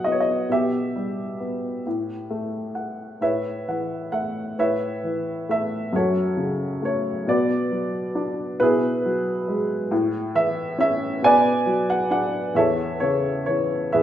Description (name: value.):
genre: classical, lyrical solo piano.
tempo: 45 BPM (dotted quarters).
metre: 6/8.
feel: rubato.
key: A major from 4.6 s.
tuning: A4 = 440 Hz.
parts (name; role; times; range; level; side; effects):
dark upright piano; solo; 0.0-14.0 s; E2 to G#5; -21 LUFS; equal; none.
room: wet recital hall reverb, RT60 1.3 s.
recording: recorded in a church or concert hall.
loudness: -21 LUFS.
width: side -11 dB against mid.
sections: 0.0-4.6 A section; 4.6-14.0 B section.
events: upright piano fill 3.2-4.6.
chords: 0.0 B; 0.5 Em/B; 1.9 Emadd11/A; 3.2 Aadd9; 5.9 F#m; 7.3 Bm; 8.6 Eadd9/B; 9.9 A; 11.2 Bm; 12.6 A/E.